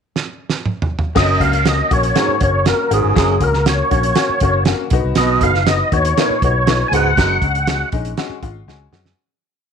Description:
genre	uptempo 1960s-style soul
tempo	120 BPM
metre	4/4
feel	straight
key	F# major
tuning	A4 = 441 Hz
part	warm soul drum kit	drums	0.2-9.2 s	crash cymbal, hi-hat, kick drum, snare drum, toms	-19 LUFS	right 3 dB	none
part	clear upright piano	accompaniment	1.1-9.1 s	G#3 to G#5	-22 LUFS	left 11 dB	none
part	tonewheel organ	melody	1.2-7.9 s	G#4 to G#5	-17 LUFS	left 1 dB	overdrive, chorus vibrato, slow rotary speaker
part	breathy baritone saxophone	riff	1.2-7.4 s	F#2 to B2	-22 LUFS	right 9 dB	none
part	fingered electric bass	bass	1.2-9.1 s	F#1 to F#2	-20 LUFS	equal	none
room	light reverb, small room reverb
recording	1960s-style stereo with parts hard left and right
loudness	-14 LUFS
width	side -7 dB against mid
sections	0.0-1.2 pickup bar; 1.2-9.2 A section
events	drum fill 0.2-1.2, 8.7-9.2; fade-out 7.2-9.2; upright piano fill 8.2-9.2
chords	0.0 N.C.; 1.2 F#; 4.9 B; 7.2 F#sus2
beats	0.16 0.66 | 1.16 1.66 2.17 2.67 | 3.17 3.67 4.17 4.67 | 5.17 5.67 6.17 6.67 | 7.17 7.67 8.17 8.67

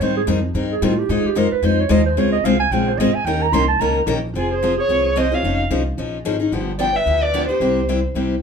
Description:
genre	acoustic string swing (jazz manouche)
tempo	221 BPM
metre	4/4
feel	swing 57% on 8ths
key	F minor from 4.3 s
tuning	A4 = 440 Hz
part	mellow clarinet	second line	0.0-8.0 s	F4 to C6	-22 LUFS	right 7 dB	none
part	picked steel-string acoustic guitar	accompaniment	0.0-8.3 s	C3 to C5	-20 LUFS	left 2 dB	none
part	upright bass	bass	0.0-8.4 s	F1 to A2	-23 LUFS	equal	none
part	dark violin	melody	4.4-8.0 s	Ab4 to G5	-20 LUFS	left 1 dB	none
room	wet club reverb, RT60 0.6 s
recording	heard from further back in the room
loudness	-16 LUFS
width	side -6 dB against mid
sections	0.0-4.3 A section; 4.3-8.4 B section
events	clarinet solo 0.0-4.3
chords	0.0 Abmaj7; 1.1 Fm7; 2.2 Dbmaj7; 3.3 Eb7; 4.3 Fm; 5.4 Dbadd9/F; 6.5 G7; 7.6 C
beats	| 0.01 0.28 0.55 0.82 | 1.09 1.36 1.64 1.91 | 2.18 2.45 2.72 2.99 | 3.26 3.53 3.80 4.08 | 4.35 4.62 4.89 5.16 | 5.44 5.71 5.98 6.25 | 6.53 6.80 7.07 7.34 | 7.62 7.89 8.16

